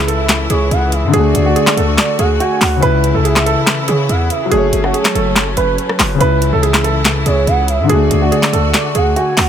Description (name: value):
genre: hip hop, trap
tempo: 142 BPM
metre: 4/4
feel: half-time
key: C# phrygian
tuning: A4 = 440 Hz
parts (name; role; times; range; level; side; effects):
- warm baby grand piano; melody; 0.0-9.5 s; F#4 to B4; -17 LUFS; right 5 dB; tape echo
- gliding portamento lead; second line; 0.0-9.5 s; B4 to G#5; -21 LUFS; right 4 dB; chorus, tape echo
- felt-muted upright piano; accompaniment; 0.0-9.5 s; C#3 to C#5; -19 LUFS; left 7 dB; none
- bright studio string section; sustained chords; 0.0-9.5 s; C#3 to F#4; -22 LUFS; left 2 dB; none
- distorted 808-style bass; bass; 0.0-9.5 s; F#1 to C#3; -17 LUFS; equal; distortion
- trap drum kit; drums; 0.1-9.5 s; handclaps, hi-hat, rim click, snare drum; -15 LUFS; equal; none
room: small room ambience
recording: none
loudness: -11 LUFS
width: side -9 dB against mid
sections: 0.0-9.5 A section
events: none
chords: 0.0 C#m; 1.1 D; 2.8 C#m; 4.5 F#m; 6.2 C#m; 7.9 D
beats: 0.29 0.71 | 1.14 1.56 1.98 2.40 | 2.83 3.25 3.67 4.09 | 4.51 4.94 5.36 5.78 | 6.21 6.63 7.05 7.47 | 7.89 8.32 8.74 9.16